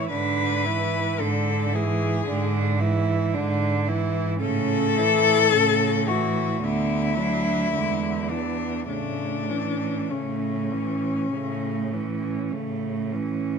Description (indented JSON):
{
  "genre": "classical, lyrical piece for cello ensemble",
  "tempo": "49-57 BPM",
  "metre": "4/4",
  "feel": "rubato",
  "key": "A major",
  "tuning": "A4 = 438 Hz",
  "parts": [
    { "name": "rich cello", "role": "melody", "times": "0.0-12.5 s", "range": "C#4 to C#5", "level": "-25 LUFS", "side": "left 7 dB", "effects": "none" },
    { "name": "rich cello", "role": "second line", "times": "0.0-13.6 s", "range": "G#3 to E4", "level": "-29 LUFS", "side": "right 11 dB", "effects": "none" },
    { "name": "rich cello", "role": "accompaniment", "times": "0.0-13.6 s", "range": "C#3 to F#3", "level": "-30 LUFS", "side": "left 2 dB", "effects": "none" },
    { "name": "rich cello", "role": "bass", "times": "0.1-13.6 s", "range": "D2 to A2", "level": "-27 LUFS", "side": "right 2 dB", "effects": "none" }
  ],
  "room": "light reverb",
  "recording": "close, detailed microphones",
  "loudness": "-22 LUFS",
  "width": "side -6 dB against mid",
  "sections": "0.0-13.6 A section",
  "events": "none",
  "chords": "0.1 E7/G#; 4.4 A; 6.6 Bm/D; 7.7 E7; 8.9 A"
}